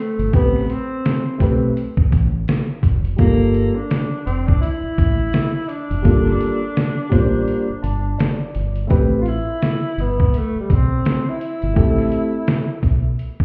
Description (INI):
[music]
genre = hip hop, jazz-hop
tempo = 84 BPM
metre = 4/4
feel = swing 60% on 16ths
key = A minor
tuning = A4 = 440 Hz
[part]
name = breathy tenor saxophone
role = melody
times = 0.0-13.1 s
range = G3 to F4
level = -26 LUFS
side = equal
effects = none
[part]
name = deep dub fingered electric bass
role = bass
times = 0.2-13.4 s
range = F1 to B1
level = -23 LUFS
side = equal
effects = none
[part]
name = trip hop sampler-style drum kit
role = drums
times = 0.2-13.4 s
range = hi-hat, kick drum, snare drum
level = -20 LUFS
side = equal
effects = none
[part]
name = warm concert grand piano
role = accompaniment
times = 0.3-12.3 s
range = G3 to A5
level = -24 LUFS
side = equal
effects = none
[sound]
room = light reverb, digital ambience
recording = heard muffled through a wall, stone room reverb, EQ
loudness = -19 LUFS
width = mono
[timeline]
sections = 0.0-8.9 A section; 8.9-13.4 B section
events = break 7.5-8.9; grand piano fill 7.5-8.9; tenor saxophone solo 8.9-13.4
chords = 0.0 Am9; 3.2 Gm9; 8.9 Am9